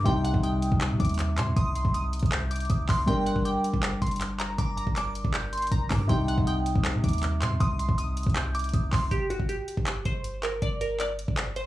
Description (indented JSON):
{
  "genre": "hip hop, trap",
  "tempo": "159 BPM",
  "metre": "4/4",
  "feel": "half-time",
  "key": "G minor",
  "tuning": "A4 = 440 Hz",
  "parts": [
    { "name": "dark baby grand piano", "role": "accompaniment", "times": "0.0-9.1 s", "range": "C3 to Bb4", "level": "-31 LUFS", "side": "left 2 dB", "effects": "low-pass filter" },
    { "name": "warm 808-style bass", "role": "bass", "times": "0.0-11.7 s", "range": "G1 to C3", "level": "-29 LUFS", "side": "equal", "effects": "none" },
    { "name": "glassy wavetable pluck", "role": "melody", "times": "0.1-11.7 s", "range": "F#4 to Eb6", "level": "-33 LUFS", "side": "right 1 dB", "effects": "chorus, low-pass filter, tape echo" },
    { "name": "glassy synth bell", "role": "second line", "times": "0.1-9.1 s", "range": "Bb5 to G6", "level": "-36 LUFS", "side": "right 1 dB", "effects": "chorus, tape echo" },
    { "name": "trap drum kit", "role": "drums", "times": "0.1-11.7 s", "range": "handclaps, hi-hat, kick drum", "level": "-29 LUFS", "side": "equal", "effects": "none" }
  ],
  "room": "little or no reverb",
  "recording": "dry, gritty hardware recording, transformer saturation, cassette tape, studio reverb",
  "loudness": "-24 LUFS",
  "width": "side -15 dB against mid",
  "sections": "0.0-9.1 A section; 9.1-11.7 B section",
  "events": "none",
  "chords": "0.1 Cm; 3.1 Gm; 6.1 Cm; 9.1 G5"
}